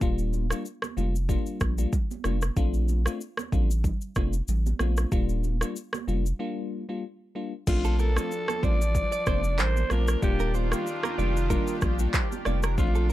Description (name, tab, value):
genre	afrobeats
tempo	94 BPM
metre	4/4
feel	swing 55% on 16ths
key	unclear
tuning	A4 = 440 Hz
part	bell-like FM electric piano	accompaniment	0.0-13.1 s	G3 to F4	-33 LUFS	left 3 dB	chorus, plate reverb
part	saturated sub bass	bass	0.0-13.1 s	Eb1 to Bb1	-26 LUFS	equal	none
part	afro-pop drum kit	drums	0.0-13.1 s	crash cymbal, handclaps, kick drum, rim click, shaker	-28 LUFS	equal	none
part	congas	percussion	0.3-12.6 s	none	-39 LUFS	right 10 dB	none
part	breathy alto saxophone	melody	7.7-13.1 s	F4 to D5	-31 LUFS	left 1 dB	digital delay, plate reverb
part	lush unison pad	sustained chords	7.7-13.1 s	Eb3 to G4	-36 LUFS	right 1 dB	chorus, plate reverb
part	direct-recorded clean electric guitar	riff	7.8-13.1 s	A4 to D5	-36 LUFS	right 7 dB	wide subtle chorus, digital delay
room	little or no reverb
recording	dark, warm production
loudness	-24 LUFS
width	side -15 dB against mid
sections	0.0-7.7 A section; 7.7-13.1 B section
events	break 6.4-7.7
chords	0.0 Ebmaj9; 2.6 Bbmaj7; 5.1 Ebmaj9; 7.7 Bbmaj7; 10.2 Ebmaj9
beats	| 0.01 0.65 1.29 1.93 | 2.57 3.21 3.84 4.48 | 5.12 5.76 6.40 7.04 | 7.67 8.31 8.95 9.59 | 10.23 10.86 11.50 12.14 | 12.78